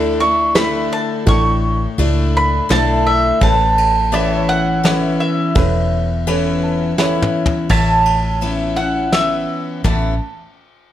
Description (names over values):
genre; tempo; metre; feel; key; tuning
honky-tonk and classic country; 84 BPM; 3/4; straight; A major; A4 = 444 Hz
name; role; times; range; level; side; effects
mandolin; melody; 0.0-10.2 s; E5 to D6; -18 LUFS; right 1 dB; plate reverb
dark upright piano; accompaniment; 0.0-7.7 s; C#4 to A5; -23 LUFS; right 3 dB; none
picked steel-string acoustic guitar; accompaniment; 0.0-10.1 s; E2 to E4; -20 LUFS; left 3 dB; none
pedal steel guitar; sustained chords; 0.0-9.8 s; C#5 to A5; -27 LUFS; right 1 dB; none
vintage muted fingered electric bass; bass; 0.0-10.2 s; E1 to D2; -20 LUFS; equal; none
soft brush drum kit; drums; 0.6-10.0 s; crash cymbal, kick drum, ride cymbal, snare drum, toms; -22 LUFS; equal; none
room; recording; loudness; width
moderate large studio reverb, RT60 1.0 s; none; -14 LUFS; side -12 dB against mid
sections
0.0-7.7 A section; 7.7-9.8 B section; 9.8-10.9 C section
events
upright piano fill 6.3-7.7; drum fill 7.0-7.7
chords
0.0 Dsus2; 3.4 Aadd9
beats
0.56 | 1.27 1.99 2.70 | 3.42 4.13 4.84 | 5.56 6.27 6.99 | 7.70 8.42 9.13 | 9.85